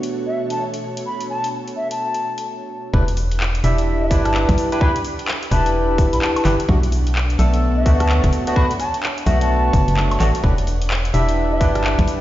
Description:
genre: UK garage, two-step garage.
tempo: 128 BPM.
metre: 4/4.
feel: swing 62% on 16ths.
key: E minor.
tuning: A4 = 440 Hz.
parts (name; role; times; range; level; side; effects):
ethereal airy pad; sustained chords; 0.0-12.2 s; B2 to F#5; -32 LUFS; right 2 dB; ensemble chorus, built-in reverb, sidechain pumping.
barky tine electric piano; stabs; 0.0-12.2 s; A3 to E5; -22 LUFS; equal; lush chorus, digital delay.
garage drum kit; drums; 0.0-12.2 s; handclaps, hi-hat, rim click, woodblock; -27 LUFS; left 1 dB; small room ambience.
baroque flute; melody; 0.3-11.9 s; E5 to B5; -25 LUFS; left 1 dB; digital delay.
organ-like FM bass; bass; 2.9-12.1 s; E1 to D2; -18 LUFS; equal; none.
electronic kick drum; drums; 2.9-12.1 s; none; -17 LUFS; equal; small room ambience.
room: light reverb.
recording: played on a big sound system in a bare room, stone room reverb, nothing above 7.5 kHz.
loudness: -16 LUFS.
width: side -14 dB against mid.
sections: 0.0-2.9 A section; 2.9-12.2 B section.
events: filter sweep on tine electric piano 0.0-2.9; break 2.5-2.9; drop 2.9-12.2.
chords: 0.0 Bm7; 2.9 Em7; 6.7 Bm7; 10.4 Em7.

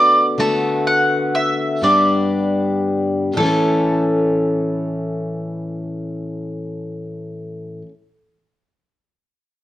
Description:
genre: acoustic folk duo or small band.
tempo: 109-128 BPM.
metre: 3/4.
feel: straight.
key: A mixolydian.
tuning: A4 = 440 Hz.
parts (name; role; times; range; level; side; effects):
mandolin; melody; 0.0-7.8 s; A4 to A5; -17 LUFS; equal; plate reverb.
picked plugged-in steel-string acoustic guitar; accompaniment; 0.0-7.9 s; G2 to A4; -19 LUFS; left 1 dB; none.
room: moderate studio reverb, RT60 1.0 s.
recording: worn, warbling old tape, cassette tape, warbly pitch drift.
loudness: -16 LUFS.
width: side -13 dB against mid.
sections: 0.0-3.4 A section; 3.4-6.7 B section.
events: slowing down 0.4-3.4.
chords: 0.0 D6; 1.8 G; 3.4 A.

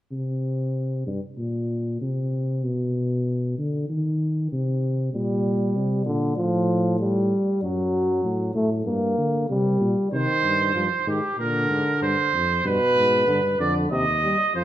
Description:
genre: classical, imitative canzona for brass ensemble.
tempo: 96 BPM.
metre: 4/4.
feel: straight.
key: C minor.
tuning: A4 = 441 Hz.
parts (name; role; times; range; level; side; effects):
warm tuba; bass; 0.1-14.6 s; Eb2 to Eb3; -25 LUFS; left 1 dB; none.
mellow euphonium; accompaniment; 5.1-14.6 s; B2 to Bb3; -24 LUFS; equal; none.
warm trumpet; second line; 10.1-14.6 s; G4 to Eb5; -21 LUFS; right 2 dB; none.
room: moderate recital hall reverb, RT60 1.8 s.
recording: minimal, uncompressed stereo recording.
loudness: -21 LUFS.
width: side -12 dB against mid.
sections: 0.1-14.6 A section.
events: none.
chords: 0.1 C5; 1.4 Bbsus2; 2.6 Bm; 3.9 Cm/Eb; 5.1 Gm/Bb; 6.4 F/A; 7.6 F#m; 8.9 Gm; 10.1 Cm; 11.4 Bb; 12.6 G; 13.9 Cm/Eb.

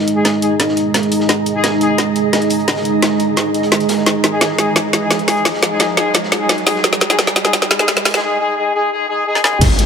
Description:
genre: dark technical drum and bass.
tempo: 173 BPM.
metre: 4/4.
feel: straight.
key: unclear.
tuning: A4 = 440 Hz.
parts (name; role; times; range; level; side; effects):
dark analog pad; sustained chords; 0.0-9.9 s; G#3 to D#5; -18 LUFS; right 2 dB; chorus, sidechain pumping.
riser and impact; sound effects; 0.8-9.9 s; none; -26 LUFS; right 1 dB; none.
granular cloud pad; texture; 0.2-8.2 s; G#4 to A#5; -24 LUFS; right 2 dB; built-in reverb, sidechain pumping.
crunchy breakbeat drum kit; drums; 0.1-9.9 s; hi-hat, snare drum; -28 LUFS; equal; none.
drum and bass drum kit; drums; 0.1-9.9 s; crash cymbal, hi-hat, snare drum, toms; -16 LUFS; equal; overdrive.
warm brass ensemble; stabs; 0.2-2.0, 4.3-9.6 s; G#3 to G#4; -19 LUFS; left 2 dB; vintage 12-bit sampler grit, ping-pong delay.
snarling distorted saw bass; bass; 9.6-9.9 s; G#1; -16 LUFS; equal; distortion, tube saturation.
electronic kick drum; drums; 9.6-9.7 s; none; -14 LUFS; equal; overdrive.
room: moderate lush hall reverb, RT60 2.3 s.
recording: high-pass filter.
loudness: -13 LUFS.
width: side -6 dB against mid.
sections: 0.0-9.6 A section.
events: build-up 0.0-9.6; drum fill 0.0-8.2, 9.4; filter sweep 0.0-9.6; riser 0.8-8.2; impact 9.6.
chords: 0.0 G#5.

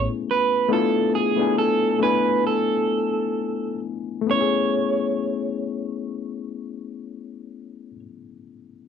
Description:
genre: R&B.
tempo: 63-72 BPM.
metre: 4/4.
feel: swing 57% on 16ths.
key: A major.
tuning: A4 = 440 Hz.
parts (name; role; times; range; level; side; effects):
overdriven reed electric piano; accompaniment; 0.0-8.9 s; A3 to G#5; -24 LUFS; left 9 dB; none.
electric guitar through a small old amp; melody; 0.3-8.0 s; G#4 to C#5; -22 LUFS; right 6 dB; slapback echo.
room: little or no reverb.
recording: dry, close 1970s-style studio recording.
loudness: -20 LUFS.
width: side -7 dB against mid.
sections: 0.0-4.3 A section; 4.3-8.1 B section.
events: slowing down 0.0-4.3.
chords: 0.0 Amaj9; 0.7 Dm6; 4.3 Amaj9.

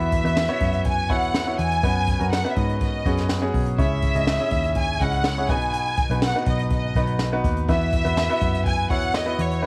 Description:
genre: piano-driven pop.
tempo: 123 BPM.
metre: 4/4.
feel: straight.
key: unclear.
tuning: A4 = 440 Hz.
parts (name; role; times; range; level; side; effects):
rich studio violin section; melody; 0.0-9.6 s; C#5 to G#5; -28 LUFS; equal; cassette tape.
clear baby grand piano; accompaniment; 0.0-9.7 s; B2 to E5; -29 LUFS; equal; cassette tape.
vintage muted picked electric bass; bass; 0.0-9.6 s; B1 to G#2; -28 LUFS; equal; none.
jazz brush drum kit; drums; 0.0-9.6 s; hi-hat, kick drum, snare drum; -28 LUFS; equal; none.
room: studio ambience.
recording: home recording on cassette.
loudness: -22 LUFS.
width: mono.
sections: 0.0-9.7 A section.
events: none.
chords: 0.0 Esus2; 1.8 F#sus4; 3.8 C#m; 5.5 B; 7.7 Esus2.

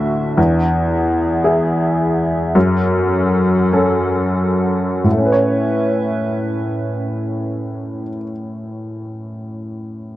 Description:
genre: neoclassical piano and strings.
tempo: 44-59 BPM (dotted quarters).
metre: 6/8.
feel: rubato.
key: A major.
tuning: A4 = 440 Hz.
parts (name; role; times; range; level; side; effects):
clear upright piano; accompaniment; 0.0-10.2 s; D2 to C#5; -16 LUFS; left 1 dB; none.
warbly tape-like pad; sustained chords; 0.0-8.0 s; B3 to F#5; -26 LUFS; right 4 dB; chorus, built-in reverb.
room: light reverb.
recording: dry, close 1970s-style studio recording.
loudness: -15 LUFS.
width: side -15 dB against mid.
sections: 0.0-5.0 A section; 5.0-10.2 B section.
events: slowing down 0.0-5.0.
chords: 0.4 E; 2.5 F#m; 5.0 Aadd9.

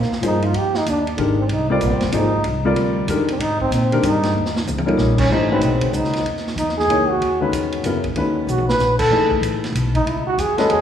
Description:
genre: modal jazz.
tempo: 189 BPM.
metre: 3/4.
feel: swing 63% on 8ths.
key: F dorian, G# phrygian from 5.3 s.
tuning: A4 = 440 Hz.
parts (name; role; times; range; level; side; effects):
breathy trombone; second line; 0.0-10.8 s; Bb3 to B4; -20 LUFS; right 1 dB; none.
upright bass; bass; 0.0-10.8 s; F1 to Bb2; -23 LUFS; equal; none.
vintage drum kit; drums; 0.0-10.8 s; crash cymbal, hi-hat, kick drum, ride cymbal, snare drum, toms; -27 LUFS; right 1 dB; none.
warm baby grand piano; accompaniment; 0.2-10.8 s; C#3 to D#5; -21 LUFS; left 2 dB; none.
room: wet concert hall reverb, RT60 1.8 s.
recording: recorded in a church or concert hall, small room ambience.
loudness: -16 LUFS.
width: side -9 dB against mid.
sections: 0.0-5.3 A section; 5.3-10.8 A section.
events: trombone solo 0.0-10.8; drum fill 4.4-5.0, 8.5-8.8.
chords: 0.0 Fm11; 4.4 Eb7; 5.3 G#m11; 9.1 F#m11.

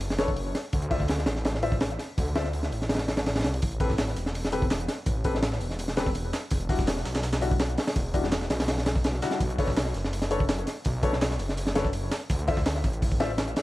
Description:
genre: drum and bass, jungle.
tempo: 166 BPM.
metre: 4/4.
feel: straight.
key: A minor.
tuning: A4 = 441 Hz.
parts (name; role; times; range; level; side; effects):
detuned saw bass; bass; 0.0-13.5 s; E1 to D2; -30 LUFS; equal; none.
crunchy breakbeat drum kit; drums; 0.0-13.6 s; hi-hat, kick drum, snare drum; -27 LUFS; equal; none.
dark baby grand piano; stabs; 0.2-13.3 s; G3 to E5; -32 LUFS; left 3 dB; dub echo.
breakbeat sampler-style drum kit; drums; 3.6-13.6 s; hi-hat, snare drum; -40 LUFS; right 2 dB; high-pass filter on hats, high-pass filter on snare.
room: small room ambience.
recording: vinyl crackle.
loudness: -25 LUFS.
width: side -18 dB against mid.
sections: 0.0-13.6 A section.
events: none.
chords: 0.0 Bm9; 0.7 D7(no3); 3.6 Am9; 6.5 Em9; 9.4 Bm9; 12.3 Dm9.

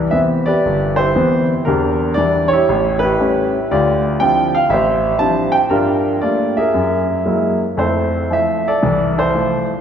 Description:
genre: solo jazz.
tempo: 118 BPM.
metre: 4/4.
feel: swing 66% on 8ths, rubato.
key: C major.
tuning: A4 = 437 Hz.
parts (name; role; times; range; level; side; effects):
clear concert grand piano; solo; 0.0-9.8 s; G1 to A5; -14 LUFS; equal; none.
room: wet church reverb, RT60 3.1 s.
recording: recorded in a church or concert hall.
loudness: -14 LUFS.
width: side -8 dB against mid.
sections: 0.0-9.8 A section.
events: none.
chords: 0.0 Cmaj7; 1.7 Em7b5; 2.7 A7; 3.7 Dm11; 5.7 Gm9; 6.7 F#9; 7.8 Fmaj7.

